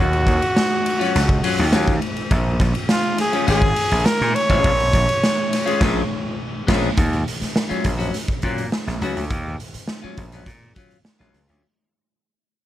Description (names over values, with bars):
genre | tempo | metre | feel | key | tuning
funk | 103 BPM | 4/4 | straight | Eb minor | A4 = 441 Hz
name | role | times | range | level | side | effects
clear trumpet | melody | 0.0-6.4 s | F4 to Db5 | -21 LUFS | right 1 dB | none
clean electric guitar | accompaniment | 0.0-11.6 s | Gb3 to Ab4 | -24 LUFS | left 5 dB | none
gritty slap bass | bass | 0.0-11.6 s | Ab1 to Bb2 | -21 LUFS | equal | overdrive
raw garage drum kit | drums | 0.1-11.6 s | crash cymbal, hi-hat, kick drum, ride cymbal, snare drum | -21 LUFS | equal | none
room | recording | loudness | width
small room ambience | none | -17 LUFS | side -13 dB against mid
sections
0.0-7.0 A section; 7.0-11.6 B section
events
band accent 5.8-7.0; fade-out 7.0-11.6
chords
0.0 Ebm9; 2.3 Bbm7; 7.0 Ebm9 (rootless)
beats
0.56 1.14 1.72 | 2.31 2.89 3.47 4.05 | 4.64 5.22 5.80 6.39 | 6.97 7.55 8.13 8.72 | 9.30 9.88 10.46 11.05